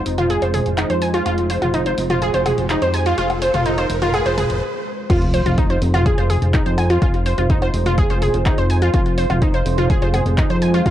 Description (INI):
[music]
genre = melodic techno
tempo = 125 BPM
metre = 4/4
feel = straight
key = F minor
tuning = A4 = 440 Hz
[part]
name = deep dark ambient pad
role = sustained chords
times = 0.0-10.9 s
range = Ab3 to C5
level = -27 LUFS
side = right 4 dB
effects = chorus, built-in reverb, sidechain pumping, cassette tape
[part]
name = fat analog bass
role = bass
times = 0.0-10.9 s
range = F1 to F2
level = -20 LUFS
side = equal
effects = sidechain pumping
[part]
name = riser and sub drop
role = sound effects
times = 0.2-7.0 s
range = none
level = -29 LUFS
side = equal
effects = none
[part]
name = punchy analog drum machine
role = drums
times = 0.1-10.9 s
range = crash cymbal, handclaps, hi-hat, toms, woodblock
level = -26 LUFS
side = left 1 dB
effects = cassette tape
[part]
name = wide unison pluck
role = arpeggios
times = 0.2-10.9 s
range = Eb4 to Ab5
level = -20 LUFS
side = equal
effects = sidechain pumping, cassette tape, analog delay
[part]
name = electronic kick drum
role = drums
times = 5.1-10.9 s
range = none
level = -19 LUFS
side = equal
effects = cassette tape
[sound]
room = light reverb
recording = home recording on cassette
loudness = -15 LUFS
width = side -12 dB against mid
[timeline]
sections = 0.0-5.1 A section; 5.1-10.9 B section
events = build-up 0.0-5.1; riser 0.2-4.6; stop 4.6-5.1; drop 5.1-10.9; impact 5.1-7.0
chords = 0.0 Fm